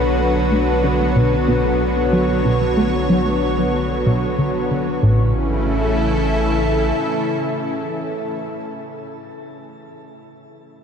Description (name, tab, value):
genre	ambient, sequencer-driven space music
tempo	93 BPM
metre	4/4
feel	straight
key	A major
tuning	A4 = 438 Hz
part	lush unison pad	sustained chords	0.0-8.4 s	C#3 to C#5	-19 LUFS	equal	chorus, shimmer reverb
part	thumb-piano-like synth pluck	arpeggios	0.0-5.3 s	A4 to A5	-37 LUFS	right 1 dB	none
part	plucky analog bass	riff	0.0-5.3 s	A2 to B3	-21 LUFS	equal	ensemble chorus, tape echo, shimmer reverb
part	warm sub bass	bass	0.0-6.9 s	A1 to B1	-24 LUFS	equal	none
part	wind-like tuned noise texture	texture	0.0-5.0 s	C#5	-33 LUFS	right 4 dB	none
room	wet huge ambient reverb, RT60 7.7 s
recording	dark, warm production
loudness	-16 LUFS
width	side -7 dB against mid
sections	0.0-5.0 A section; 5.0-7.6 B section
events	none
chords	0.0 Bm; 5.0 A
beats	0.51 1.16 1.80 | 2.45 3.09 3.74 4.38 | 5.03 5.67 6.32 6.96